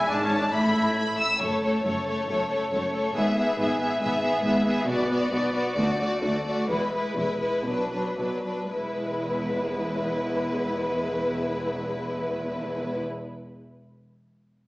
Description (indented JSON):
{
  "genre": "cinematic, heroic adventure film score",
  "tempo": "110-139 BPM",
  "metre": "4/4",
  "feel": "straight",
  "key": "E mixolydian",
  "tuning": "A4 = 440 Hz",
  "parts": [
    { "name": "warm symphonic violin section", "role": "melody", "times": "0.0-13.0 s", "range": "B4 to E6", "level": "-28 LUFS", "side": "left 1 dB", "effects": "none" },
    { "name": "warm symphonic violin section", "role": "second line", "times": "0.0-13.0 s", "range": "D4 to E5", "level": "-32 LUFS", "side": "equal", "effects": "none" },
    { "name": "rich symphonic viola section", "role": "accompaniment", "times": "0.0-13.0 s", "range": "F#3 to B3", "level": "-30 LUFS", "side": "equal", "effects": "none" },
    { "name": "clear trumpet", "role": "stabs", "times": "0.0-1.2 s", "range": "C#4 to E4", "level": "-29 LUFS", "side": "equal", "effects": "none" },
    { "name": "dark studio cello section", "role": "bass", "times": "0.0-13.0 s", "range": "D2 to B2", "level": "-31 LUFS", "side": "equal", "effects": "none" },
    { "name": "warm symphonic double bass section", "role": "bass", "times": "0.0-13.0 s", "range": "E1 to D2", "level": "-38 LUFS", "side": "equal", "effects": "none" }
  ],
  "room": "wet recital hall reverb, RT60 1.5 s",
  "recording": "recorded in a church or concert hall, small speaker sound",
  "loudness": "-24 LUFS",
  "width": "side -19 dB against mid",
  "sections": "0.0-1.4 A section; 1.4-8.7 B section; 8.7-13.1 C section",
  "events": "slowing down 4.0-8.7",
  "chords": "0.0 E; 0.5 Asus2; 1.4 F#m; 3.1 E/G#; 4.9 Bm; 5.8 D; 6.7 E; 7.7 Bm; 8.7 E",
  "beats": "0.09 0.53 0.97 | 1.41 1.85 2.28 2.71 | 3.15 3.58 4.01 4.45 | 4.88 5.32 5.77 6.23 | 6.70 7.17 7.67 8.19 | 8.72 9.27 9.81 10.36 | 10.90 11.44 11.98 12.53"
}